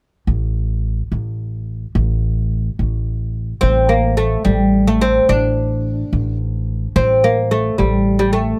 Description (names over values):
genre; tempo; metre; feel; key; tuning
Arabic maqam ensemble; 72 BPM (dotted quarters); 6/8; straight; A maqam kurd; A4 = 440 Hz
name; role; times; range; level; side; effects
upright bass; bass; 0.3-8.5 s; A1; -21 LUFS; equal; none
oud; melody; 3.6-8.6 s; G3 to D4; -17 LUFS; equal; none
room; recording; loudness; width
little or no reverb; close, detailed microphones; -17 LUFS; mono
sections
0.3-3.6 A section; 3.6-8.6 B section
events
none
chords
none